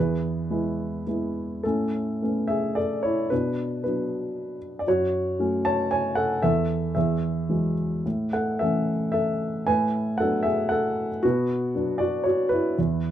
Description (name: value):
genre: classical, lyrical solo piano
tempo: 101-120 BPM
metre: 3/4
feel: rubato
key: A major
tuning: A4 = 441 Hz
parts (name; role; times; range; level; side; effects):
- dark baby grand piano; solo; 0.0-13.1 s; E2 to A5; -23 LUFS; equal; none
room: light reverb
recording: dark, warm production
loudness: -23 LUFS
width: side -11 dB against mid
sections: 0.0-1.6 A section; 1.6-13.1 A section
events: none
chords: 0.0 E; 1.6 Aadd9; 3.3 Bm; 4.9 F#m; 6.4 Esus4; 7.0 Eadd9; 8.1 A; 9.7 D6/A; 11.2 Bm